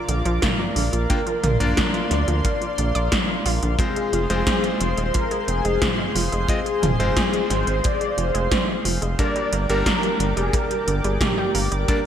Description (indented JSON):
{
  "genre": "synthwave",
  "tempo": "89 BPM",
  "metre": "4/4",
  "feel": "straight",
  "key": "F dorian",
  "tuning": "A4 = 437 Hz",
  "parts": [
    { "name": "mellow synth brass", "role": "melody", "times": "0.0-12.1 s", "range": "F4 to D5", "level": "-26 LUFS", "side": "left 1 dB", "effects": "chorus, digital delay" },
    { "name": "chorused pulse-width pad", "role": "sustained chords", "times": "0.0-12.1 s", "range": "Ab4 to D6", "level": "-29 LUFS", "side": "left 1 dB", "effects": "sidechain pumping" },
    { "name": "bright electric grand piano", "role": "stabs", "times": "0.0-12.0 s", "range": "G3 to G5", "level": "-29 LUFS", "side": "equal", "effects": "digital delay" },
    { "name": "analog pluck", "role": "arpeggios", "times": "0.1-12.0 s", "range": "D3 to D5", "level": "-30 LUFS", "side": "right 3 dB", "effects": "chorus, digital delay" },
    { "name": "round analog bass", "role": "bass", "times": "0.1-11.9 s", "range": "Eb1 to D2", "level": "-23 LUFS", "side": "equal", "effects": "none" },
    { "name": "80s electronic pad drums", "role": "drums", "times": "0.1-12.0 s", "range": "hi-hat, snare drum, toms", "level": "-24 LUFS", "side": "equal", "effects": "gated reverb on snare and toms, gated reverb" },
    { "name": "kick drum", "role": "drums", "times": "0.4-12.0 s", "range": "none", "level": "-26 LUFS", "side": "equal", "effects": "none" }
  ],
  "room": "moderate lush hall reverb, RT60 2.0 s",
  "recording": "bright 1980s-style digital production",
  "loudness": "-19 LUFS",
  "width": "side -9 dB against mid",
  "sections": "0.0-12.1 A section",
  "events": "none",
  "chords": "0.0 Bb; 3.8 Fm; 9.2 Gm"
}